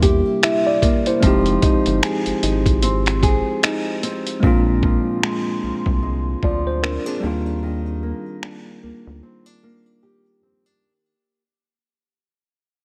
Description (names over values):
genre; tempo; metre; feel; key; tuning
contemporary R&B; 75 BPM; 4/4; swing 58% on 16ths; unclear; A4 = 440 Hz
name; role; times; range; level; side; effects
mellow tine electric piano; accompaniment; 0.0-10.8 s; G3 to E5; -24 LUFS; equal; overdrive
nylon-string guitar; arpeggios; 0.0-11.4 s; Bb2 to Ab4; -26 LUFS; equal; digital delay
rubbery square bass; bass; 0.0-9.2 s; F1 to E2; -25 LUFS; equal; none
dusty soul sampler-style drum kit; drums; 0.0-8.6 s; finger snaps, hi-hat, kick drum; -22 LUFS; equal; none
room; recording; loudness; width
light reverb; none; -19 LUFS; mono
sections
0.0-4.4 A section; 4.4-10.8 B section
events
fade-out 4.4-10.8; break 9.2-10.8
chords
0.0 C7; 1.2 Fm7; 4.4 Bb7; 7.2 Ebmaj7